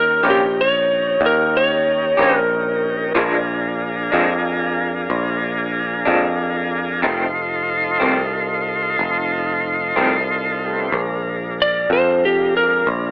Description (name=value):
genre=slow blues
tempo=62 BPM (dotted quarters)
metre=12/8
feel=straight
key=Bb mixolydian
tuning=A4 = 440 Hz
part: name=lightly driven lead guitar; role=melody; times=0.0-3.5, 11.6-12.9 s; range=G4 to D5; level=-16 LUFS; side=equal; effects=none
part: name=tonewheel organ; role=sustained chords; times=0.0-13.1 s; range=G3 to C5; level=-21 LUFS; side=equal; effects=slow rotary speaker
part: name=picked electric bass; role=bass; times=0.0-13.1 s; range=F1 to F2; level=-23 LUFS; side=equal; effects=none
part: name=electric guitar through a small old amp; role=accompaniment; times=0.2-10.2 s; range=F2 to G4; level=-18 LUFS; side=equal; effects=tremolo
room=moderate studio reverb, RT60 0.9 s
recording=AM radio sound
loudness=-16 LUFS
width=side -26 dB against mid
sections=0.0-10.9 A section; 10.9-13.1 B section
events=lead electric guitar solo 10.9-13.1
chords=0.0 Eb7; 3.2 Bb7; 7.0 F7; 10.9 Bb7